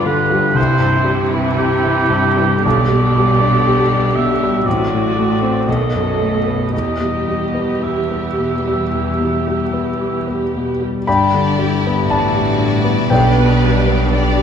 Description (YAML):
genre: classical, romantic movement for piano and orchestra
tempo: 54-61 BPM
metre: 4/4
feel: rubato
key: E minor, G major from 11.1 s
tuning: A4 = 437 Hz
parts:
  - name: clear grand piano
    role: melody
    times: 0.0-14.4 s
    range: A1 to B5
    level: -16 LUFS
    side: left 2 dB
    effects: none
  - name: warm oboe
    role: second line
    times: 0.0-10.5 s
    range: G4 to E5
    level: -20 LUFS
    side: right 2 dB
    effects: none
  - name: warm symphonic viola section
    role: accompaniment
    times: 0.0-14.4 s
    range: C3 to D5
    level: -22 LUFS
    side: right 3 dB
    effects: none
  - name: clear symphonic cello section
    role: bass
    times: 0.0-14.4 s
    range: E2 to C3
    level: -22 LUFS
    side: right 3 dB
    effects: none
  - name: rich symphonic violin section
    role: melody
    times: 11.1-14.4 s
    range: D5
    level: -28 LUFS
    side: left 2 dB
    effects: none
  - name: clear symphonic violin section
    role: second line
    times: 11.1-14.4 s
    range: D4 to G4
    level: -23 LUFS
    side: left 3 dB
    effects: none
  - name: mellow French horn section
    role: sustained chords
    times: 11.1-14.4 s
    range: G3 to D4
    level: -23 LUFS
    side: left 6 dB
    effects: none
  - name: rich symphonic double bass section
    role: bass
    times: 11.1-14.4 s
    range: G1 to B1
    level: -21 LUFS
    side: right 2 dB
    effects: none
  - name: timpani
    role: percussion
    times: 13.1-14.4 s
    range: B2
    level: -23 LUFS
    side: equal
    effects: none
room: moderate scoring stage reverb, RT60 1.9 s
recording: minimal, uncompressed stereo recording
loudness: -13 LUFS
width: side -8 dB against mid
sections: 0.0-11.1 A section; 11.1-14.4 B section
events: none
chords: 0.0 G7; 0.6 C; 2.6 G/B; 4.7 F#dim/A; 5.7 B7; 6.7 Em; 11.1 G; 13.1 G/B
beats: 0.57 1.58 | 2.65 3.65 4.66 5.67 | 6.73 7.81 8.91 9.99 | 11.07 12.09 13.10 14.12